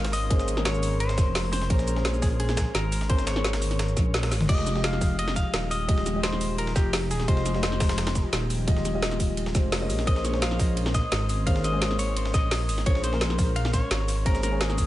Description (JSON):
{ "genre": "liquid drum and bass", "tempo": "172 BPM", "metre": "4/4", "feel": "straight", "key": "F minor", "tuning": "A4 = 440 Hz", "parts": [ { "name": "semi-hollow electric guitar", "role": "melody", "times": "0.0-14.9 s", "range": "G4 to F5", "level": "-32 LUFS", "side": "left 1 dB", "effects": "tape echo" }, { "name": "dark grand piano", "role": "accompaniment", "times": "0.0-14.9 s", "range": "Ab3 to Eb5", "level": "-32 LUFS", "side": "left 2 dB", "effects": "tape echo" }, { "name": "airy breathy pad", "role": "sustained chords", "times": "0.0-14.9 s", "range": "F3 to C6", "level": "-37 LUFS", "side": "left 1 dB", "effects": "none" }, { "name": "dark detuned saw bass", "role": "bass", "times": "0.0-14.9 s", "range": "Eb1 to Bb1", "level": "-27 LUFS", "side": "equal", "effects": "none" }, { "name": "breakbeat sampler-style drum kit", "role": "drums", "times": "0.0-14.9 s", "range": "hi-hat, ride cymbal, snare drum", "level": "-36 LUFS", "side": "right 1 dB", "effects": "high-pass filter on cymbals, high-pass filter on snare, high-pass filter on hats" }, { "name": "drum and bass drum kit", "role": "drums", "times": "0.1-14.9 s", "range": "crash cymbal, hi-hat, ride cymbal, shaker, snare drum, toms", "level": "-31 LUFS", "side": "equal", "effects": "none" }, { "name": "electronic kick drum", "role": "drums", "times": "0.3-14.9 s", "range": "none", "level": "-24 LUFS", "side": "equal", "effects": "none" } ], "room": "light reverb, digital ambience", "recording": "echo-heavy mix, nothing above 11.0 kHz", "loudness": "-22 LUFS", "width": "side -15 dB against mid", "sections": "0.0-4.5 A section; 4.5-14.9 A section", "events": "drop 0.0-4.5, 4.5-14.9; band accent 4.1; drum fill 4.3", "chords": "0.0 Bbm9; 4.5 Fm9; 9.9 Bbm9" }